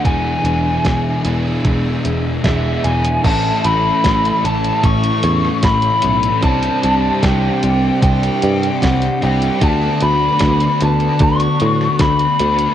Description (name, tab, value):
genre	rock, shoegaze and dream pop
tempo	75 BPM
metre	4/4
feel	straight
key	unclear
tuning	A4 = 439 Hz
part	lead guitar through a small cranked amp	melody	0.0-12.7 s	E5 to C#6	-18 LUFS	left 1 dB	overdrive, cassette tape, tape echo
part	string machine, full ensemble	sustained chords	0.0-12.7 s	B3 to E5	-26 LUFS	right 1 dB	ensemble chorus, cassette tape
part	biting overdriven guitar	riff	0.0-12.7 s	A2 to G#4	-24 LUFS	right 9 dB	reverse reverb, cassette tape
part	thick fuzz guitar	riff	0.0-12.7 s	E2 to D4	-20 LUFS	left 6 dB	distortion, ensemble chorus, cassette tape
part	picked electric bass	bass	0.0-12.7 s	E1 to A2	-19 LUFS	equal	none
part	clean 12-bit digital drum machine	drums	0.1-12.7 s	crash cymbal, hi-hat, kick drum, snare drum	-19 LUFS	right 1 dB	cassette tape
room	little or no reverb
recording	home recording on cassette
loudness	-13 LUFS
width	side -10 dB against mid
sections	0.0-3.2 A section; 3.2-12.7 B section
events	none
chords	0.0 E7; 3.2 A; 6.4 Csus2; 9.6 D6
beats	| 0.05 0.84 1.64 2.44 | 3.24 4.04 4.83 5.63 | 6.43 7.22 8.02 8.82 | 9.62 10.41 11.21 12.00